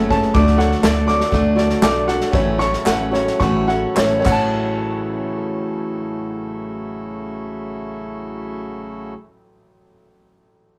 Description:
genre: indie folk with a building arrangement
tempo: 99-124 BPM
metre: 4/4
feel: straight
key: A major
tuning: A4 = 439 Hz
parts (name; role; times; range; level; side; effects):
- clear grand piano; accompaniment; 0.0-10.8 s; F#1 to E5; -28 LUFS; equal; none
- picked steel-string acoustic guitar; accompaniment; 0.0-9.3 s; A2 to G#4; -25 LUFS; equal; none
- pedal harmonium; sustained chords; 0.0-9.1 s; C#3 to F#4; -32 LUFS; equal; none
- clear upright piano; arpeggios; 0.0-9.2 s; A4 to D6; -24 LUFS; equal; none
- upright bass; bass; 0.0-9.1 s; F#1 to D2; -26 LUFS; equal; none
- unplugged drum kit; drums; 0.1-4.4 s; crash cymbal, kick drum, snare drum; -24 LUFS; equal; none
- group handclap; percussion; 0.8-4.8 s; none; -28 LUFS; equal; none
room: wet small room reverb, RT60 0.6 s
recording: rough rehearsal-room recording, tube saturation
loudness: -19 LUFS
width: mono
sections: 0.0-4.6 A section; 4.6-9.4 B section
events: slowing down 0.4-4.6; drum fill 4.3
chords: 0.4 D; 2.3 A6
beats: | 0.35 0.84 1.33 1.82 | 2.33 2.86 3.40 3.97 | 4.56 5.16 5.77 6.37 | 6.97 7.58 8.18 8.79

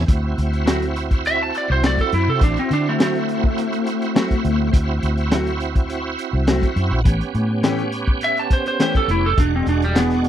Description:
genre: straight-eighth soul blues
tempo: 103 BPM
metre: 4/4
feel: straight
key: unclear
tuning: A4 = 442 Hz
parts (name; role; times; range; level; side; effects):
- bright tonewheel organ; accompaniment; 0.0-10.3 s; G#3 to G4; -26 LUFS; right 5 dB; slow rotary speaker, chorus vibrato
- vintage muted fingered electric bass; bass; 0.0-10.3 s; E1 to D3; -21 LUFS; equal; none
- crunchy breakbeat drum kit; drums; 0.1-10.3 s; hi-hat, kick drum, snare drum; -19 LUFS; equal; none
- mellow electric guitar; stabs; 0.7-10.1 s; E3 to G#4; -23 LUFS; left 3 dB; none
- lightly driven lead guitar; melody; 1.3-4.7, 8.2-10.3 s; G3 to A5; -20 LUFS; equal; none
room: little or no reverb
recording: dry, close 1970s-style studio recording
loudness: -17 LUFS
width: side -10 dB against mid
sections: 0.0-10.3 A section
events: lead electric guitar solo 0.0-10.3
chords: 0.1 D7; 7.1 A7; 9.4 E7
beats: | 0.08 0.67 1.25 1.83 | 2.41 2.99 3.57 4.15 | 4.74 5.32 5.90 6.48 | 7.06 7.64 8.22 8.80 | 9.38 9.96

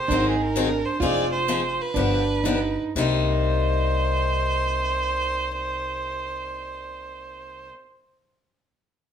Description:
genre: acoustic string swing (jazz manouche)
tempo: 116-135 BPM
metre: 4/4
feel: swing 64% on 8ths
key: C minor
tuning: A4 = 439 Hz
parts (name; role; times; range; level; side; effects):
- warm violin; melody; 0.0-7.7 s; Ab4 to D5; -26 LUFS; right 4 dB; none
- picked plugged-in steel-string acoustic guitar; second line; 0.0-7.7 s; D4 to G4; -29 LUFS; right 4 dB; none
- picked swing-style acoustic guitar; accompaniment; 0.1-7.7 s; C3 to Ab4; -27 LUFS; left 6 dB; none
- upright bass; bass; 0.1-7.7 s; F1 to C2; -28 LUFS; left 1 dB; none
room: wet large studio reverb, RT60 0.9 s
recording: band playing live in one room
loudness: -21 LUFS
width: side -8 dB against mid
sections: 0.0-3.0 A section; 3.0-7.1 B section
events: slowing down 0.0-3.0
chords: 0.1 Ab7; 1.0 Fm7; 2.0 G7b13; 3.0 Cm7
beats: 0.10 0.55 | 1.01 1.48 1.96 2.45 | 2.96 3.48 4.00 4.52 | 5.04 5.55 6.07 6.59

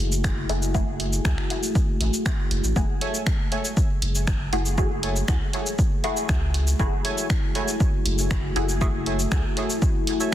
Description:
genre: dub techno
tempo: 119 BPM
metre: 4/4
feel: straight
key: F# minor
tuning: A4 = 439 Hz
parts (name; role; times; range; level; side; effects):
- deep dark ambient pad; sustained chords; 0.0-10.3 s; A3 to G#4; -30 LUFS; left 1 dB; chorus, built-in reverb, sidechain pumping
- round analog bass; bass; 0.0-9.4 s; F#1 to C#2; -25 LUFS; equal; sidechain pumping
- punchy analog drum machine; drums; 0.1-10.3 s; cabasa, finger snaps, hi-hat; -30 LUFS; equal; soft clipping on snare
- electronic kick drum; drums; 0.2-9.9 s; none; -24 LUFS; equal; overdrive
- filtered dub chord stab; stabs; 0.5-8.9 s; A3 to G#4; -31 LUFS; left 1 dB; phaser, sidechain pumping, dub echo
- warbly lo-fi synth keys; riff; 3.0-10.3 s; A4 to G#5; -33 LUFS; right 2 dB; chorus, sidechain pumping, dub echo
room: digital ambience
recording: dense, heavily limited modern master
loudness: -21 LUFS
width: side -12 dB against mid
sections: 0.0-2.8 A section; 2.8-10.3 A section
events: none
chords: 0.0 F#m9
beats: 0.24 | 0.75 1.25 1.75 2.26 | 2.76 3.27 3.77 4.28 | 4.78 5.28 5.79 6.29 | 6.80 7.30 7.80 8.31 | 8.81 9.32 9.82 10.33

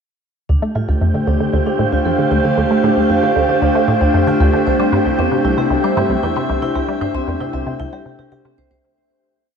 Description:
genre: ambient, sequencer-driven space music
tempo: 115 BPM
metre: 4/4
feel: straight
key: D minor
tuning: A4 = 440 Hz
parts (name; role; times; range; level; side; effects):
- evolving wavetable pad; sustained chords; 0.7-8.8 s; A3 to F5; -17 LUFS; equal; chorus, built-in reverb
- vibraphone with medium hard mallets; arpeggios; 0.5-8.8 s; C4 to D5; -27 LUFS; right 1 dB; auto-pan, tape echo
- resonant blip pluck; riff; 0.5-8.8 s; C2 to A3; -18 LUFS; equal; phaser, tape echo
- wind-like tuned noise texture; texture; 0.9-8.9 s; G4 to G5; -24 LUFS; left 1 dB; built-in reverb
room: wet lush hall reverb, RT60 3.2 s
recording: cassette tape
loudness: -14 LUFS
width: side -6 dB against mid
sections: 0.5-8.8 A section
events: fade-in on vibraphone 0.5-8.8; fade-out 6.1-8.8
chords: 0.5 Dm; 4.7 C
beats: | 0.49 1.01 1.54 2.06 | 2.58 3.10 3.62 4.15 | 4.67 5.19 5.71 6.23 | 6.75 7.28 7.80 8.32

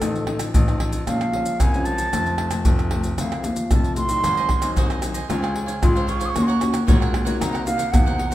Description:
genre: samba and choro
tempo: 114 BPM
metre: 4/4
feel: straight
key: unclear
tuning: A4 = 440 Hz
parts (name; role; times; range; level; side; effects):
- wooden flute; melody; 0.0-8.3 s; A4 to Eb6; -25 LUFS; right 2 dB; none
- nylon-string guitar; accompaniment; 0.0-8.3 s; F2 to Gb4; -26 LUFS; left 2 dB; none
- warm baby grand piano; bass; 0.0-8.3 s; F1 to A2; -26 LUFS; left 1 dB; none
- maracas, surdo, pandeiro and tamborim; percussion; 0.0-8.3 s; none; -21 LUFS; equal; none
- cavaquinho; accompaniment; 4.2-8.3 s; Eb4 to Gb5; -32 LUFS; right 4 dB; none
room: wet large studio reverb, RT60 1.3 s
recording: minimal, uncompressed stereo recording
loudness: -18 LUFS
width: side -14 dB against mid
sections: 0.0-8.3 A section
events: flute solo 0.0-8.3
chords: 0.0 F7/A; 1.1 Bbm7; 2.1 F; 4.2 Ab7; 5.3 Dbmaj7; 6.3 Ebm7; 7.4 Cm7b5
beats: | 0.02 0.54 1.07 1.60 | 2.13 2.66 3.18 3.71 | 4.24 4.77 5.29 5.82 | 6.35 6.88 7.41 7.93

